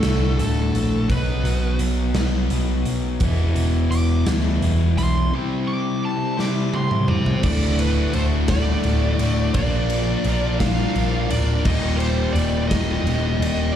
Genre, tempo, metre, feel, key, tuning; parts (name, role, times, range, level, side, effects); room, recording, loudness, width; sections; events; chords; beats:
quiet-loud alternative rock; 57 BPM (dotted quarters); 6/8; straight; A4 = 440 Hz
smooth overdriven lead guitar; melody; 0.0-13.8 s; A4 to D6; -28 LUFS; right 2 dB; slapback echo
cranked stack guitar; riff; 0.0-13.8 s; D2 to Bb4; -27 LUFS; right 10 dB; overdrive
fuzz guitar; riff; 0.0-13.8 s; D2 to C5; -25 LUFS; left 10 dB; distortion
overdriven picked electric bass; bass; 0.0-13.7 s; D1 to D2; -21 LUFS; equal
big rock drum kit; drums; 0.0-13.6 s; crash cymbal, hi-hat, kick drum, ride cymbal, snare drum, toms; -26 LUFS; equal
little or no reverb; live gig heard through the venue's PA, club reverb; -18 LUFS; side -10 dB against mid
0.0-7.4 A section; 7.4-13.8 B section
lead electric guitar solo 0.0-7.4; break 5.3-7.4; drum fill 6.4-7.4
0.0 D; 1.1 B; 3.2 E; 5.3 C; 7.4 D; 9.6 Bb; 11.7 Eb
0.03 | 1.09 2.15 | 3.21 4.27 | 5.33 6.39 | 7.45 8.50 | 9.56 10.61 | 11.67 12.72